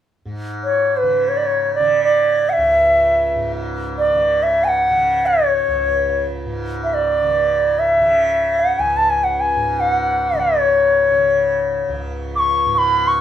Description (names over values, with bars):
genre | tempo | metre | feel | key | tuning
indian classical | free time | none | none | C# raga bhairavi | A4 = 442 Hz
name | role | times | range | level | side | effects
tanpura | drone | 0.3-13.2 s | C#2 to C#3 | -26 LUFS | equal | none
bright reedy bansuri | melody | 0.6-13.2 s | B4+24c to D6 | -14 LUFS | equal | none
room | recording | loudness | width
wet small room reverb, RT60 0.6 s | heard from further back in the room | -15 LUFS | side -10 dB against mid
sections
0.3-13.2 A section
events
none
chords
none